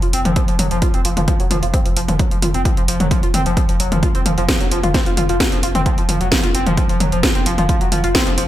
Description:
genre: driving peak-time techno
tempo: 131 BPM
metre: 4/4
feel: straight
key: unclear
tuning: A4 = 439 Hz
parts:
  - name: overdriven synth lead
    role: riff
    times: 0.0-8.4 s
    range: F3 to F4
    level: -21 LUFS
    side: equal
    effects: distortion, tube saturation, wide subtle chorus, sidechain pumping, digital delay
  - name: saturated sub bass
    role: bass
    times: 0.0-8.5 s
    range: F1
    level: -23 LUFS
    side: equal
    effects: tube saturation, sidechain pumping, low-pass filter
  - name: techno drum kit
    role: drums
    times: 0.0-8.5 s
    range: hi-hat, snare drum, toms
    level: -20 LUFS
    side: equal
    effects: gated reverb
  - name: electronic kick drum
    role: drums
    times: 0.4-8.2 s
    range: none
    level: -18 LUFS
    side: equal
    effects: none
room: light reverb, digital ambience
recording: bright 1980s-style digital production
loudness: -14 LUFS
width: side -13 dB against mid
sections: 0.0-8.5 A section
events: filter sweep on analog synth lead 0.0-8.5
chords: none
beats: | 0.36 0.82 1.28 1.74 | 2.19 2.65 3.11 3.57 | 4.03 4.49 4.94 5.40 | 5.86 6.32 6.78 7.23 | 7.69 8.15

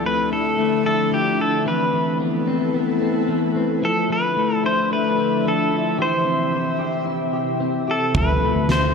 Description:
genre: dream pop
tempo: 111 BPM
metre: 4/4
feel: straight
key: D dorian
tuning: A4 = 438 Hz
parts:
  - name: pedal steel guitar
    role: melody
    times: 0.0-8.9 s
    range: G4 to C5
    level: -22 LUFS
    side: equal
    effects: digital delay
  - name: ethereal airy pad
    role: sustained chords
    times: 0.0-8.9 s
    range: C3 to E5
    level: -24 LUFS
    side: equal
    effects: ensemble chorus, built-in reverb
  - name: electric guitar at the edge of break-up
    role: arpeggios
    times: 0.0-8.9 s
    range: E3 to A4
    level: -23 LUFS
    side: left 4 dB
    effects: lush chorus, digital delay
  - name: vintage muted picked electric bass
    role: bass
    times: 8.1-8.9 s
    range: D2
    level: -23 LUFS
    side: right 1 dB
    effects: none
  - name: huge arena drum kit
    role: drums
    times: 8.1-8.8 s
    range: kick drum, snare drum, toms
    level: -23 LUFS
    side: right 1 dB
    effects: none
room: wet plate reverb, RT60 2.2 s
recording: none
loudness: -18 LUFS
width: side -5 dB against mid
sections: 0.0-8.9 A section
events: none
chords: 0.0 Dmadd9; 1.7 Amadd9; 3.8 Dmadd9; 6.0 C; 8.2 Dmadd9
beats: 0.04 0.58 1.12 | 1.66 2.21 2.75 3.29 | 3.83 4.37 4.91 5.45 | 5.99 6.53 7.07 7.61 | 8.15 8.69

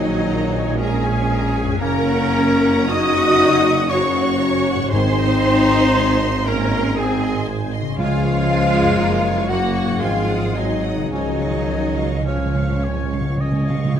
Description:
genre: classical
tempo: 58 BPM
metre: 3/4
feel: uneven beats, rubato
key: Db major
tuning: A4 = 440 Hz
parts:
  - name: rich symphonic violin section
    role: melody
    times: 0.0-13.4 s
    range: Db5 to Eb6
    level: -29 LUFS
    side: left 2 dB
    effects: none
  - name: clear clarinet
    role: second line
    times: 0.0-14.0 s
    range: F3 to Gb4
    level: -25 LUFS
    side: left 2 dB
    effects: none
  - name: mellow hollow silver concert flute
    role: second line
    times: 0.0-14.0 s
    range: Gb4 to Eb6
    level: -26 LUFS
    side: left 1 dB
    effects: none
  - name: rich symphonic violin section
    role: second line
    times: 0.0-14.0 s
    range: Bb4 to Eb6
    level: -31 LUFS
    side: left 2 dB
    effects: none
  - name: dark symphonic viola section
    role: accompaniment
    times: 0.0-13.4 s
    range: F3 to Gb4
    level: -25 LUFS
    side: equal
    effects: none
  - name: mellow French horn section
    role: sustained chords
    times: 0.0-13.4 s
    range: Db3 to Eb4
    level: -24 LUFS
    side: left 4 dB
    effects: none
  - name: concert harp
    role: arpeggios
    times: 0.0-14.0 s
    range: Gb2 to Bb4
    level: -28 LUFS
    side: left 7 dB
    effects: none
  - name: clear symphonic cello section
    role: bass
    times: 0.0-14.0 s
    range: Db4 to Eb5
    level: -24 LUFS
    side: right 3 dB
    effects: none
  - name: rich symphonic double bass section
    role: bass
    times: 0.0-14.0 s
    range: Gb1 to Db2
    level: -25 LUFS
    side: right 3 dB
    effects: none
  - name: warm tuba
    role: bass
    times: 0.0-14.0 s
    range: Gb1 to Db2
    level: -27 LUFS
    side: right 4 dB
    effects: none
  - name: clear trombone section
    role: sustained chords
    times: 1.8-11.6 s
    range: Db3 to Db4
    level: -32 LUFS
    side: right 4 dB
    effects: none
  - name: timpani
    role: percussion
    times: 4.9-14.0 s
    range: Ab2 to Db3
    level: -24 LUFS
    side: equal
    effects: none
  - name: warm oboe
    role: second line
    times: 12.3-14.0 s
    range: Eb4 to F5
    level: -31 LUFS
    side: right 1 dB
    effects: none
room: moderate concert hall reverb, RT60 1.9 s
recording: faint mains hum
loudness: -16 LUFS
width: side -9 dB against mid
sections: 0.0-14.0 A section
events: timpani fill 11.1-14.0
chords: 0.0 Bbm7; 1.8 Gb; 4.9 Ab; 8.0 Db; 9.0 Gb; 10.0 Ab7; 11.1 Db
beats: 0.80 | 1.82 2.91 3.91 | 4.93 5.96 6.98 | 7.99 9.00 10.03 | 11.13 12.28 13.41

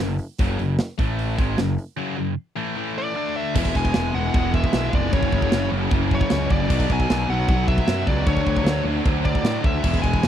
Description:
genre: heavy metal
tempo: 152 BPM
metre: 4/4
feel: straight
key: F# minor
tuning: A4 = 444 Hz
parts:
  - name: heavy high-gain guitar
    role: riff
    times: 0.0-10.3 s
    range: F#2 to D4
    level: -28 LUFS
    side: left 14 dB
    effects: distortion
  - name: scooped high-gain guitar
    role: riff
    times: 0.0-10.3 s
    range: F#2 to D4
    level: -30 LUFS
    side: right 12 dB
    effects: distortion
  - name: fuzz picked electric bass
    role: bass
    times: 0.0-10.3 s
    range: E1 to A2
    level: -24 LUFS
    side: equal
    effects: overdrive
  - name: tight metal drum kit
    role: drums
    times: 0.2-10.3 s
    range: china cymbal, crash cymbal, hi-hat, kick drum, snare drum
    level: -22 LUFS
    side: equal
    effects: none
  - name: high-gain lead guitar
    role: melody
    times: 3.0-10.3 s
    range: C#5 to G#5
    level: -27 LUFS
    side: left 1 dB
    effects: distortion, tape echo
  - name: sludgy distorted guitar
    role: riff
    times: 3.6-10.3 s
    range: E2 to D4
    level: -27 LUFS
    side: equal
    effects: overdrive
room: little or no reverb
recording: dry, close 1970s-style studio recording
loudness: -19 LUFS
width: side -10 dB against mid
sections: 0.0-3.6 A section; 3.6-10.3 B section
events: break 2.0-3.6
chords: 0.0 F#5; 1.0 A5; 1.4 F#m; 2.8 A5; 3.2 D5; 3.6 E; 5.1 F#5; 6.7 B5; 8.3 D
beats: 0.00 | 0.39 0.79 1.18 1.58 | 1.97 2.37 2.76 3.16 | 3.55 3.95 4.34 4.74 | 5.13 5.52 5.92 6.31 | 6.70 7.09 7.49 7.88 | 8.27 8.66 9.05 9.45 | 9.84 10.23

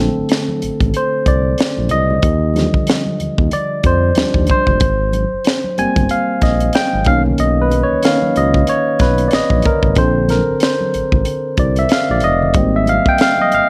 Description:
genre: R&B, neo-soul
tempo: 93 BPM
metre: 4/4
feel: swing 60% on 16ths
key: unclear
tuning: A4 = 440 Hz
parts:
  - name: barky tine electric piano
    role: accompaniment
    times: 0.0-13.7 s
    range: D3 to Ab5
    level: -18 LUFS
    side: equal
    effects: overdrive
  - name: smooth synth bass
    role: bass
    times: 0.0-13.6 s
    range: F1 to F2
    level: -20 LUFS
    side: equal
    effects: none
  - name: tight funk drum kit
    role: drums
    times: 0.3-13.7 s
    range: hi-hat, kick drum, snare drum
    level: -19 LUFS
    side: equal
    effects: none
  - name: congas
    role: percussion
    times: 0.3-13.7 s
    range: none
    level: -31 LUFS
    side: equal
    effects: none
room: light reverb, small room reverb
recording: none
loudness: -15 LUFS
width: mono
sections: 0.0-13.7 A section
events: tine electric piano solo 0.0-13.7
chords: 0.0 Bbmaj9 (rootless); 2.2 Ebmaj9; 4.8 Abmaj9; 7.1 Bmaj9; 10.0 Bbmaj9; 12.5 Abmaj9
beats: 0.29 0.94 1.58 | 2.23 2.87 3.52 4.16 | 4.81 5.45 6.10 6.74 | 7.39 8.03 8.68 9.32 | 9.97 10.61 11.26 11.90 | 12.55 13.19

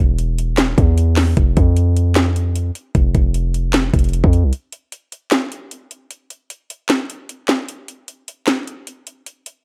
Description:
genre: hip hop, trap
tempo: 152 BPM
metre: 4/4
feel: half-time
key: unclear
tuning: A4 = 439 Hz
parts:
  - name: hard-hitting 808-style bass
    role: bass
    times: 0.0-4.5 s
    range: E1 to F2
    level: -18 LUFS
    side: equal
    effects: none
  - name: trap drum kit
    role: drums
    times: 0.2-9.6 s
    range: handclaps, hi-hat, kick drum, snare drum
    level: -20 LUFS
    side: equal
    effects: none
room: digital ambience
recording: none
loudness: -17 LUFS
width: mono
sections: 0.0-4.5 A section; 4.5-9.6 B section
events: break 4.5-9.6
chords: none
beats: 0.19 0.58 0.98 | 1.37 1.76 2.16 2.56 | 2.95 3.34 3.74 4.13 | 4.53 4.92 5.32 5.71 | 6.11 6.50 6.90 7.29 | 7.69 8.08 8.48 8.87 | 9.27

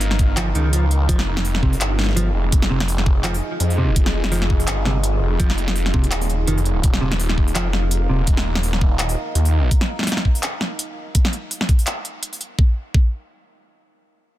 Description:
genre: half-time drum and bass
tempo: 167 BPM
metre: 4/4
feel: swing 56% on 16ths, half-time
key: unclear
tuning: A4 = 441 Hz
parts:
  - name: deep dark ambient pad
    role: sustained chords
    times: 0.0-9.7 s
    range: Eb4 to F5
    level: -30 LUFS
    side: right 1 dB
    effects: chorus, built-in reverb, sidechain pumping
  - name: phased detuned saw bass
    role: bass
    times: 0.0-9.7 s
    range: Eb1 to F2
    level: -20 LUFS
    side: equal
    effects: phaser, tube saturation
  - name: drum and bass drum kit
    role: drums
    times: 0.0-12.5 s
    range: handclaps, hi-hat, snare drum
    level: -24 LUFS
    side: equal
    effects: none
  - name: electronic kick drum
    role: drums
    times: 0.2-13.1 s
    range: none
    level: -17 LUFS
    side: equal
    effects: none
  - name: clean electric guitar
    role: arpeggios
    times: 0.4-8.2 s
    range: C3 to F3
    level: -26 LUFS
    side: right 1 dB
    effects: vintage 12-bit sampler grit, digital delay
room: little or no reverb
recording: dense, heavily limited modern master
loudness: -17 LUFS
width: side -14 dB against mid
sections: 0.0-12.6 A section; 12.6-14.4 B section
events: drop 0.0-12.6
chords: 0.0 Eb; 1.1 Fm7; 6.8 Eb5; 12.6 N.C.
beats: 0.01 0.37 0.73 | 1.09 1.45 1.81 2.17 | 2.52 2.88 3.24 3.60 | 3.96 4.32 4.68 5.04 | 5.40 5.76 6.12 6.48 | 6.84 7.20 7.55 7.92 | 8.27 8.63 8.99 9.35 | 9.71 10.07 10.43 10.79 | 11.15 11.51 11.87 12.23 | 12.59 12.95

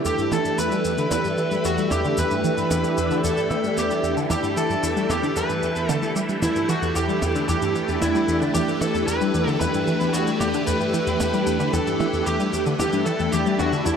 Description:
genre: ambient, sequencer-driven space music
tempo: 113 BPM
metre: 4/4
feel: straight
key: E minor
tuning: A4 = 440 Hz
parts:
  - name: phased string machine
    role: sustained chords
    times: 0.0-14.0 s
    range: E3 to G4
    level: -24 LUFS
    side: equal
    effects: ensemble chorus, phaser
  - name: bubbling stepped-filter texture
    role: texture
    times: 0.0-14.0 s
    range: E4 to E5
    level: -34 LUFS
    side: right 2 dB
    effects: chorus, built-in reverb
  - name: dark smooth lead guitar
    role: melody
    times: 0.1-14.0 s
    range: E4 to B4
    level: -25 LUFS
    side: right 1 dB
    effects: overdrive, analog delay
  - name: tight sequenced synth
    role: riff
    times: 0.1-13.9 s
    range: E2 to G3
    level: -26 LUFS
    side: left 1 dB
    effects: chorus, phaser, analog delay
  - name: shaker and percussion blips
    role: percussion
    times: 0.1-14.0 s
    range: none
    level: -32 LUFS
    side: right 1 dB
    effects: overdrive
room: wet plate reverb, RT60 3.4 s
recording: none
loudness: -20 LUFS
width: side -7 dB against mid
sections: 0.0-14.0 A section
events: none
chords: 0.0 Em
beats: | 0.05 0.58 1.12 1.65 | 2.18 2.71 3.24 3.77 | 4.30 4.83 5.36 5.89 | 6.43 6.96 7.49 8.02 | 8.55 9.08 9.61 10.14 | 10.67 11.20 11.73 12.27 | 12.80 13.33 13.86

